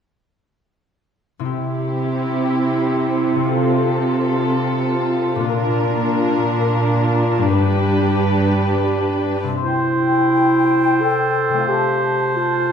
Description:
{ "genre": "cinematic, emotional film score for orchestra", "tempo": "88 BPM", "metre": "3/4", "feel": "rubato", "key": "C major", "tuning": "A4 = 440 Hz", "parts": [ { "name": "concert harp", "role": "arpeggios", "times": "1.4-12.7 s", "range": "G2 to C5", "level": "-24 LUFS", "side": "left 4 dB", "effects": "none" }, { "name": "muted studio violin section", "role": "melody", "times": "1.5-9.4 s", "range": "G4 to B4", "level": "-26 LUFS", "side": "left 4 dB", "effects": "none" }, { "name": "muted studio viola section", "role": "accompaniment", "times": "1.5-9.4 s", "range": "C4 to G4", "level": "-20 LUFS", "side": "right 1 dB", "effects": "none" }, { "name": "muted studio cello section", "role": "bass", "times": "1.5-9.4 s", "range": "G2 to C3", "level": "-21 LUFS", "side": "right 3 dB", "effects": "none" }, { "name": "dark clarinet", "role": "second line", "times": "9.6-12.7 s", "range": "E4 to A4", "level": "-18 LUFS", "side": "equal", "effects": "none" }, { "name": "mellow large flute ensemble", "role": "second line", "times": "9.6-12.7 s", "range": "G5 to A5", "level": "-22 LUFS", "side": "left 4 dB", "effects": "none" }, { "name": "warm oboe", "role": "second line", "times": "9.6-12.7 s", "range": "C5", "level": "-21 LUFS", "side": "right 3 dB", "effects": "none" } ], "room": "moderate scoring stage reverb, RT60 1.6 s", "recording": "minimal, uncompressed stereo recording", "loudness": "-16 LUFS", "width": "side -7 dB against mid", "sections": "1.5-9.6 A section; 9.6-12.7 B section", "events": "none", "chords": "1.5 C; 3.5 F/C; 5.5 Bb; 7.6 G; 9.6 C; 11.7 F/C", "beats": "| 1.49 2.17 2.85 | 3.53 4.21 4.88 | 5.54 6.21 6.89 | 7.56 8.24 8.94 | 9.63 10.31 11.01 | 11.69 12.36" }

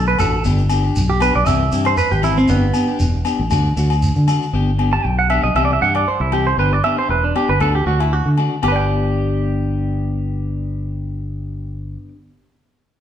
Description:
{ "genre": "highlife guitar band", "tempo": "117 BPM", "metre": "4/4", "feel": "swing 53% on 16ths", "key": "G major", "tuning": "A4 = 440 Hz", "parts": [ { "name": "clean electric guitar", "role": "arpeggios", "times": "0.0-12.1 s", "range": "B3 to A5", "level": "-19 LUFS", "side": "right 4 dB", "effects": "none" }, { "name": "fingered electric bass", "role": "bass", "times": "0.0-12.0 s", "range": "E1 to D3", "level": "-19 LUFS", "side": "equal", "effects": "none" }, { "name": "electric guitar at the edge of break-up", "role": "accompaniment", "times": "0.2-12.2 s", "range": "E3 to G4", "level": "-24 LUFS", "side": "left 4 dB", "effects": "none" }, { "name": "agogo bells", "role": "percussion", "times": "0.2-8.8 s", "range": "none", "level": "-25 LUFS", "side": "left 8 dB", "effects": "none" }, { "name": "shekere", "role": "percussion", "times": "0.2-4.5 s", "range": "none", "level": "-24 LUFS", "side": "right 1 dB", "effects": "none" } ], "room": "wet stone room reverb, RT60 1.2 s", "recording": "band playing live in one room", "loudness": "-15 LUFS", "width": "side -10 dB against mid", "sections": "0.4-8.6 A section; 8.6-12.7 B section", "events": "clean electric guitar solo 0.4-8.6", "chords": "0.4 G; 1.5 C; 2.5 G; 3.5 D; 4.5 G; 5.6 C; 6.6 G; 7.6 D; 8.6 G", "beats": "| 0.44 0.95 1.46 1.98 | 2.49 3.00 3.51 4.02 | 4.53 5.04 5.56 6.07 | 6.58 7.09 7.61 8.12 | 8.63 9.15 9.66 10.18 | 10.69 11.20 11.72" }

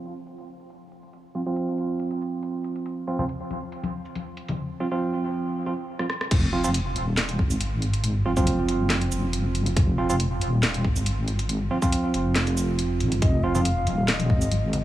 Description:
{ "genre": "deep dubstep", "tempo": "139 BPM", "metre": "4/4", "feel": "half-time", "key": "F phrygian", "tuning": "A4 = 440 Hz", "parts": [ { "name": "garage drum kit", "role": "drums", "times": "0.1-14.8 s", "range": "crash cymbal, hi-hat, rim click, shaker, snare drum", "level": "-29 LUFS", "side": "equal", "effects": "none" }, { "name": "tine electric piano", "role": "stabs", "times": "1.3-13.6 s", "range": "F3 to F4", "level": "-28 LUFS", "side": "right 3 dB", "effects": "dub echo" }, { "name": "congas", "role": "percussion", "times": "3.2-4.6, 13.5-14.8 s", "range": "none", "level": "-32 LUFS", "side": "left 3 dB", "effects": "none" }, { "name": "deep soft wobble bass", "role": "bass", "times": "6.3-14.8 s", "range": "Eb1 to Ab1", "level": "-24 LUFS", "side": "equal", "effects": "chorus" }, { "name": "electronic kick drum", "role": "drums", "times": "6.3-14.4 s", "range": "none", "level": "-21 LUFS", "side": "equal", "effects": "none" }, { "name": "breathy mellow ney", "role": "melody", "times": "13.2-14.8 s", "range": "Eb5 to F5", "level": "-30 LUFS", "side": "left 3 dB", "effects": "dub echo" } ], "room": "light reverb", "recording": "low-pass filter, small room reverb", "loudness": "-22 LUFS", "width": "side -14 dB against mid", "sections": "0.0-6.3 A section; 6.3-14.8 B section", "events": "filter sweep 0.0-6.3; drum fill 6.0-6.3; drop 6.3-14.8", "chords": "0.0 F5", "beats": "0.27 0.70 | 1.13 1.56 2.00 2.43 | 2.86 3.29 3.72 4.16 | 4.59 5.02 5.45 5.88 | 6.31 6.75 7.18 7.61 | 8.04 8.47 8.90 9.34 | 9.77 10.20 10.63 11.06 | 11.49 11.92 12.36 12.79 | 13.22 13.65 14.08 14.51" }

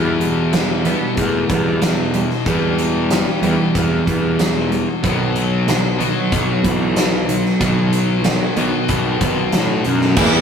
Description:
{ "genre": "quiet-loud alternative rock", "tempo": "93 BPM", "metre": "4/4", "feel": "straight", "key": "unclear", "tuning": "A4 = 439 Hz", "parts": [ { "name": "rich cello", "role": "melody", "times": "0.0-10.4 s", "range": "D#3 to B3", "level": "-24 LUFS", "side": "right 2 dB", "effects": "none" }, { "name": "twelve-string electric guitar", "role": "arpeggios", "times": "0.0-10.1 s", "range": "B2 to B3", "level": "-23 LUFS", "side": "right 4 dB", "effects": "spring reverb" }, { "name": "distorted electric guitar", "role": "riff", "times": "0.0-10.4 s", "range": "E2 to E4", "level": "-20 LUFS", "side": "left 4 dB", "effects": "distortion" }, { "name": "fuzz picked electric bass", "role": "bass", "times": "0.0-10.4 s", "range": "B1 to A2", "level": "-21 LUFS", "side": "equal", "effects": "overdrive" }, { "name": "big rock drum kit", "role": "drums", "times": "0.2-10.3 s", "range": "crash cymbal, hi-hat, kick drum, snare drum", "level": "-21 LUFS", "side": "equal", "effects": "none" }, { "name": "percussive tonewheel organ", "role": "sustained chords", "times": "10.2-10.4 s", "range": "G4 to B5", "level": "-28 LUFS", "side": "equal", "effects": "none" }, { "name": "fuzz guitar", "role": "riff", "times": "10.2-10.4 s", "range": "E3 to E4", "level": "-21 LUFS", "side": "right 7 dB", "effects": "distortion" }, { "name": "overdriven electric guitar", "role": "riff", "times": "10.2-10.4 s", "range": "E3 to E4", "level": "-22 LUFS", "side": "equal", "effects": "none" } ], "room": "light reverb", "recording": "rough rehearsal-room recording", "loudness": "-15 LUFS", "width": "side -7 dB against mid", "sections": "0.0-10.2 A section", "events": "none", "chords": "0.0 Em; 5.0 B", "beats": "0.54 1.18 1.82 | 2.47 3.11 3.75 4.39 | 5.04 5.68 6.32 6.97 | 7.61 8.25 8.89 9.53 | 10.18" }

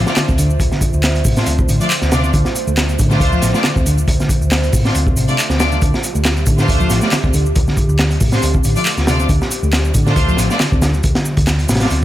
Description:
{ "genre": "breakbeat, breaks", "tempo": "138 BPM", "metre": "4/4", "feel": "swing 54% on 16ths", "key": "D minor", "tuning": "A4 = 440 Hz", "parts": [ { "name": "warbly tape-like pad", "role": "sustained chords", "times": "0.0-12.0 s", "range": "D3 to E5", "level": "-26 LUFS", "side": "right 1 dB", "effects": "chorus, built-in reverb, sidechain pumping" }, { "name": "reed electric piano", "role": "riff", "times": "0.0-12.0 s", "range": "C3 to C4", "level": "-20 LUFS", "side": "left 1 dB", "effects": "none" }, { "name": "bright studio string section", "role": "stabs", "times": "0.0-11.9 s", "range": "A3 to D5", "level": "-22 LUFS", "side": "equal", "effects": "dub echo" }, { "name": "hollow-body short-scale picked electric bass", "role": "bass", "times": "0.0-12.0 s", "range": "A1 to D2", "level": "-17 LUFS", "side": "equal", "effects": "tube saturation" }, { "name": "crunchy breakbeat drum kit", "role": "drums", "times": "0.1-12.0 s", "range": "hi-hat, kick drum, snare drum", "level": "-17 LUFS", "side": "equal", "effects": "none" }, { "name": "electronic shaker and handclaps", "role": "drums", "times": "0.1-12.0 s", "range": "none", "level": "-23 LUFS", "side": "equal", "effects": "overdrive" } ], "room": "little or no reverb", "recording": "none", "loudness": "-12 LUFS", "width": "side -14 dB against mid", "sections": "0.0-12.0 A section", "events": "none", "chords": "0.0 Dm7", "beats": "0.17 | 0.60 1.04 1.47 1.91 | 2.34 2.77 3.21 3.64 | 4.08 4.51 4.95 5.38 | 5.82 6.25 6.69 7.12 | 7.56 7.99 8.43 8.86 | 9.30 9.73 10.17 10.60 | 11.04 11.47 11.90" }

